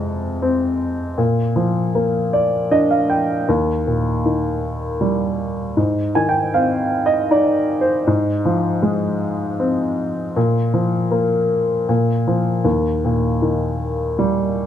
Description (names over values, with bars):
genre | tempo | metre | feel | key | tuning
folk | 78 BPM | 3/4 | straight | Eb major | A4 = 437 Hz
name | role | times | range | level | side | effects
warm upright piano | solo | 0.0-14.7 s | Eb2 to Ab5 | -16 LUFS | equal | none
room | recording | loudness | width
light reverb | dark, warm production | -16 LUFS | side -10 dB against mid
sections
0.0-12.7 A section; 12.7-14.7 A section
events
none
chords
0.0 Fm; 1.2 Bb; 3.5 Eb; 5.8 Ab; 8.1 Fm/Ab; 10.4 Bb5; 12.7 Eb